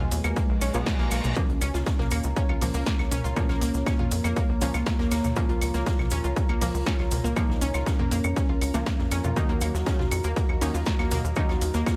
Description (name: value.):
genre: melodic techno.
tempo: 120 BPM.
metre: 4/4.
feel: straight.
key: Bb phrygian.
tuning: A4 = 440 Hz.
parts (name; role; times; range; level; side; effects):
soft octave-layered synth lead; melody; 0.0-12.0 s; G#3 to Gb4; -36 LUFS; equal; chorus, phaser, vintage 12-bit sampler grit, sidechain pumping, analog delay.
dark analog pad; sustained chords; 0.0-12.0 s; Gb3 to Bb5; -40 LUFS; equal; chorus, phaser, sidechain pumping.
unison pluck; arpeggios; 0.0-11.9 s; Bb3 to F4; -35 LUFS; equal; sidechain pumping, analog delay.
synth brass stab; stabs; 0.0-12.0 s; Bb2 to Eb4; -38 LUFS; equal; none.
tight sequencer bass; bass; 0.0-11.8 s; B1 to F2; -30 LUFS; equal; sidechain pumping.
soft-mallet drum kit; drums; 0.1-12.0 s; hi-hat, snare drum; -46 LUFS; equal; none.
techno drum kit; drums; 0.1-12.0 s; claves, hi-hat, snare drum, toms; -36 LUFS; equal; overdrive, studio reverb, analog delay.
cabasa; percussion; 0.1-12.0 s; none; -41 LUFS; equal; none.
electronic kick drum; drums; 0.4-12.0 s; none; -28 LUFS; equal; overdrive, studio reverb.
reverse cymbal; sound effects; 0.6-1.4 s; none; -39 LUFS; equal; none.
room: light reverb.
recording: echo-heavy mix.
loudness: -25 LUFS.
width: mono.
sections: 0.0-12.0 A section.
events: reverse cymbal 0.6-1.4.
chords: 0.0 B6; 1.4 Bbm/Db; 9.4 Ebm.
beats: 0.36 0.86 | 1.36 1.86 2.36 2.86 | 3.36 3.86 4.36 4.86 | 5.36 5.86 6.36 6.86 | 7.36 7.86 8.36 8.86 | 9.36 9.86 10.36 10.86 | 11.36 11.86.